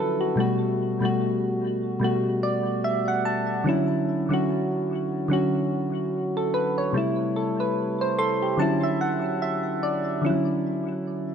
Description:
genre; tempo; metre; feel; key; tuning
R&B; 73 BPM; 4/4; swing 58% on 16ths; D major; A4 = 441 Hz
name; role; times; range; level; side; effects
soft electric-piano-like synth keys; solo; 0.0-11.3 s; B2 to C6; -22 LUFS; equal; chorus, ping-pong delay
room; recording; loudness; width
moderate scoring stage reverb, RT60 1.6 s, digital ambience; none; -22 LUFS; side -7 dB against mid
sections
0.0-10.2 A section; 10.2-11.3 B section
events
synth keys fill 2.0-3.7, 7.8-10.2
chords
0.4 Gmaj9; 3.7 Dmaj9; 6.9 C6; 8.6 Dmaj9

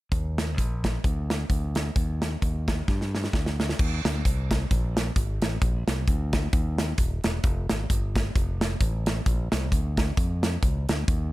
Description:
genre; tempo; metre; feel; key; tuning
uptempo gospel; 132 BPM; 4/4; swing 57% on 8ths; Eb major; A4 = 440 Hz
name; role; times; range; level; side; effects
modern bright fingered electric bass; bass; 0.1-11.3 s; Eb1 to G2; -28 LUFS; equal; none
modern studio drum kit; drums; 0.1-11.2 s; crash cymbal, hi-hat, kick drum, snare drum; -25 LUFS; equal; none
room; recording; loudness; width
little or no reverb; none; -24 LUFS; side -18 dB against mid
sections
0.1-3.8 A section; 3.8-11.3 B section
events
drum fill 2.9-3.8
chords
none

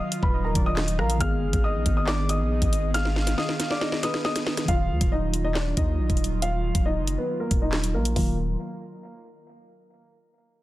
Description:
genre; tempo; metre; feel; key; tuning
hip hop, drill; 138 BPM; 4/4; half-time; Eb harmonic minor; A4 = 439 Hz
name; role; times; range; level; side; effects
dark upright piano; melody; 0.0-8.4 s; Bb3 to F6; -30 LUFS; equal; low-pass filter, tape echo
soft octave-layered synth lead; second line; 0.0-4.6 s; Ab4 to F5; -34 LUFS; right 1 dB; chorus, tape echo
muted felt-like synth keys; accompaniment; 0.0-8.4 s; Eb3 to Ab4; -33 LUFS; left 1 dB; chorus, low-pass filter
airy breathy pad; sustained chords; 0.0-8.4 s; Eb3 to Ab4; -34 LUFS; right 1 dB; chorus, low-pass filter
drill drum kit; drums; 0.1-8.3 s; handclaps, hi-hat, kick drum, rim click, snare drum; -26 LUFS; equal; none
long sustained 808-style bass; bass; 0.2-8.6 s; D1 to Eb2; -26 LUFS; equal; none
room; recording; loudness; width
light reverb, digital ambience; dense, heavily limited modern master; -22 LUFS; side -16 dB against mid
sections
0.0-4.7 A section; 4.7-8.2 B section; 8.2-9.9 C section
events
drum fill 2.9-4.7; filter sweep 4.7-8.2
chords
0.0 Ebmadd9; 1.2 Abm; 4.7 Ebmadd9

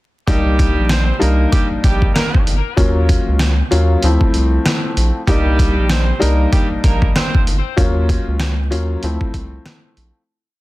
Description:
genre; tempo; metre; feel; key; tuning
hip hop, boom-bap hip-hop; 96 BPM; 4/4; swing 59% on 16ths; C dorian; A4 = 440 Hz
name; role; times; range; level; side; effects
warm upright piano; accompaniment; 0.3-10.2 s; F3 to F4; -20 LUFS; left 2 dB; cassette tape, high-pass filter, low-pass filter, plate reverb
clear saxophone section; stabs; 0.3-7.4 s; G3 to C5; -23 LUFS; right 2 dB; high-pass filter, low-pass filter, ping-pong delay, plate reverb
round analog bass; bass; 0.3-10.1 s; G1 to Eb2; -16 LUFS; equal; none
trip hop sampler-style drum kit; drums; 0.3-10.1 s; hi-hat, kick drum, rim click, snare drum; -16 LUFS; equal; none
room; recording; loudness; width
little or no reverb; dense, heavily limited modern master, vinyl crackle; -13 LUFS; side -18 dB against mid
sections
0.3-10.3 hook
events
fade-out 7.8-10.3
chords
0.3 Cm9; 2.8 Ebm9; 4.0 Dm9 (rootless); 5.3 Cm9; 7.8 Ebm9; 9.0 Dm9 (rootless)

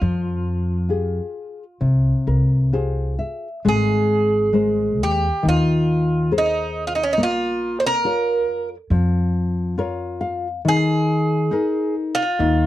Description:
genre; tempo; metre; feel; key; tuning
fado-style ballad; 68 BPM; 4/4; rubato; F harmonic minor, Ab major from 3.7 s; A4 = 445 Hz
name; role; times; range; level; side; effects
Irish bouzouki; melody; 0.0-12.7 s; Db4 to C5; -21 LUFS; right 2 dB; slapback echo
nylon-string guitar; accompaniment; 0.0-12.7 s; C3 to F5; -22 LUFS; left 3 dB; none
upright bass; bass; 0.0-12.7 s; Ab1 to F2; -22 LUFS; equal; none
room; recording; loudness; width
little or no reverb; dry, close 1970s-style studio recording; -18 LUFS; side -14 dB against mid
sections
0.0-3.7 A section; 3.7-12.7 B section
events
nylon-string guitar fill 1.8-3.7, 9.3-10.6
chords
0.0 Fmadd9; 3.7 Abadd9; 7.2 Bbm; 10.6 Ebsus4

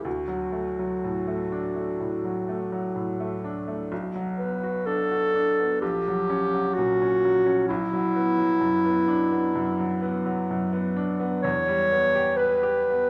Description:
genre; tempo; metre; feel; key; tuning
classical, romantic duo for clarinet and grand piano; 63 BPM; 4/4; rubato; unclear; A4 = 440 Hz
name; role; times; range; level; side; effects
warm clarinet; melody; 0.0-13.1 s; E4 to C#5; -26 LUFS; equal; none
bright baby grand piano; accompaniment; 0.0-13.1 s; A#1 to B4; -30 LUFS; equal; none
room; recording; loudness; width
wet recital hall reverb, RT60 1.6 s; none; -25 LUFS; mono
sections
0.0-13.1 A section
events
none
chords
0.1 D; 3.9 Bm7; 5.8 F#/A#; 7.7 Bm; 11.4 Em

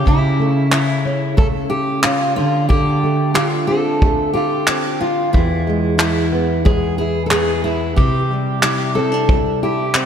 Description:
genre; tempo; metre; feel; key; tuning
acoustic pop; 91 BPM; 4/4; straight; unclear; A4 = 439 Hz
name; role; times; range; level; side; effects
fingerpicked steel-string acoustic guitar; melody; 0.0-10.1 s; E4 to A4; -20 LUFS; equal; analog delay
nylon-string guitar; accompaniment; 0.0-10.1 s; E2 to F4; -18 LUFS; equal; double-tracked left and right
unplugged drum kit; drums; 0.1-10.1 s; handclaps, kick drum; -18 LUFS; equal; none
room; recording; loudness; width
moderate lush hall reverb, RT60 2.6 s; dreamy mix soaked in reverb; -14 LUFS; side -8 dB against mid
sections
0.0-10.1 A section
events
none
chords
0.0 A/C#; 2.4 Dm7; 5.3 E; 8.0 Cadd9

